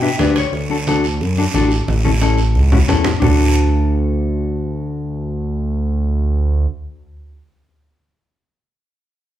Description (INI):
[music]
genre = latin, cumbia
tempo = 178 BPM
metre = 4/4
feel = straight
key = D major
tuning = A4 = 439 Hz
[part]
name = mellow electric guitar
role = accompaniment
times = 0.0-7.4 s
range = C#4 to E5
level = -19 LUFS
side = left 4 dB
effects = none
[part]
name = smooth gliding synth bass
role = bass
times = 0.0-6.7 s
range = A1 to B2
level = -17 LUFS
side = right 1 dB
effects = none
[part]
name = congas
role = percussion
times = 0.2-3.3 s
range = none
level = -21 LUFS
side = right 1 dB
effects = none
[part]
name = guiro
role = percussion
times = 0.2-3.3 s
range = none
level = -27 LUFS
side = right 4 dB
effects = none
[part]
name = timbales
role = percussion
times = 0.2-0.5 s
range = none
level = -30 LUFS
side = right 4 dB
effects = none
[sound]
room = moderate large studio reverb, RT60 1.2 s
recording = band playing live in one room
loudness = -14 LUFS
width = side -12 dB against mid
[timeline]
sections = 0.0-3.2 A section; 3.2-5.9 B section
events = clean electric guitar fill 0.0-0.5; drum fill 1.9-3.2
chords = 0.0 G; 0.5 D; 1.9 A; 3.2 D